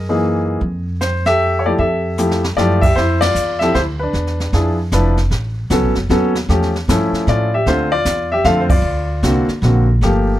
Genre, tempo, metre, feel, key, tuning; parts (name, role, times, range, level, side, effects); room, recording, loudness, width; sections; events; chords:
jazz piano trio; 153 BPM; 3/4; swing 64% on 8ths; F major; A4 = 441 Hz
warm baby grand piano; melody; 0.0-10.4 s; D3 to F5; -16 LUFS; left 1 dB
upright bass; bass; 0.0-10.4 s; F1 to A2; -18 LUFS; equal
jazz brush drum kit; drums; 0.6-10.4 s; brushed snare drum, crash cymbal, hi-hat, kick drum, ride cymbal, snare drum; -22 LUFS; right 1 dB
light reverb; dark, warm production; -14 LUFS; side -13 dB against mid
0.0-3.0 A section; 3.0-10.4 B section
drum fill 2.2-2.6; band accent 3.2, 8.6
0.0 Gb13; 0.6 Fmaj9; 3.0 Fmaj7(no3); 4.1 E7(no3); 5.3 A69; 6.5 A7b13; 7.7 Dm7; 8.8 D7alt